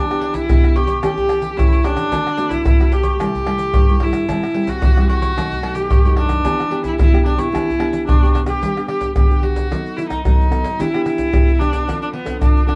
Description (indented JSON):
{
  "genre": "samba and choro",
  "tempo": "111 BPM",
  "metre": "4/4",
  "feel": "straight",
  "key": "E minor, G major from 8.6 s",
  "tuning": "A4 = 445 Hz",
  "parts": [
    { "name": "rich viola", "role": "melody", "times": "0.0-12.7 s", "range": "B3 to G4", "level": "-23 LUFS", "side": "equal", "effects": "none" },
    { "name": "nylon-string guitar", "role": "accompaniment", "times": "0.0-12.8 s", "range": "F#2 to A4", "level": "-26 LUFS", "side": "equal", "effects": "none" },
    { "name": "egg shaker, pandeiro, tamborim, surdo and agogo bells", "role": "percussion", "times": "0.1-12.8 s", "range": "none", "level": "-19 LUFS", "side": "equal", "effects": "none" }
  ],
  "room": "wet small room reverb, RT60 0.5 s",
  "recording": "heard from further back in the room, nothing above 10.9 kHz",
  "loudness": "-17 LUFS",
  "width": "mono",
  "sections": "0.0-8.6 A section; 8.6-12.8 B section",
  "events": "none",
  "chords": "0.0 Em7; 1.0 A7/E; 2.1 D7; 3.2 C6; 4.3 Am7; 5.4 B7; 6.5 Em7; 8.6 G; 9.7 B7/F#; 10.8 Em7; 11.9 Dm7/F"
}